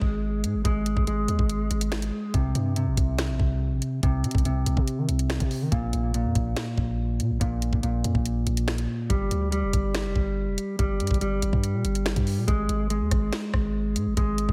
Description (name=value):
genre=hip hop, drill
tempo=142 BPM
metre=4/4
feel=half-time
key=unclear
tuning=A4 = 441 Hz
part: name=mellow electric guitar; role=arpeggios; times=0.0-14.5 s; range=Bb2 to Ab3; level=-30 LUFS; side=equal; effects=spring reverb, low-pass filter, digital delay
part: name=long sustained 808-style bass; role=bass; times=0.0-14.5 s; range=F1 to Eb3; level=-30 LUFS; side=equal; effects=none
part: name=drill drum kit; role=drums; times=0.0-14.5 s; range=finger snaps, hi-hat, kick drum, rim click, snare drum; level=-29 LUFS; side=equal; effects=none
room=light reverb, digital ambience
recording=none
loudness=-26 LUFS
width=mono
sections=0.0-14.5 A section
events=none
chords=0.0 Ab5; 2.3 N.C.; 5.7 Bb5; 9.1 G5; 12.5 Ab5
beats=0.23 | 0.65 1.07 1.50 1.92 | 2.34 2.76 3.19 3.61 | 4.03 4.45 4.88 5.30 | 5.72 6.14 6.57 6.99 | 7.41 7.83 8.26 8.68 | 9.10 9.52 9.95 10.37 | 10.79 11.21 11.64 12.06 | 12.48 12.90 13.33 13.75 | 14.17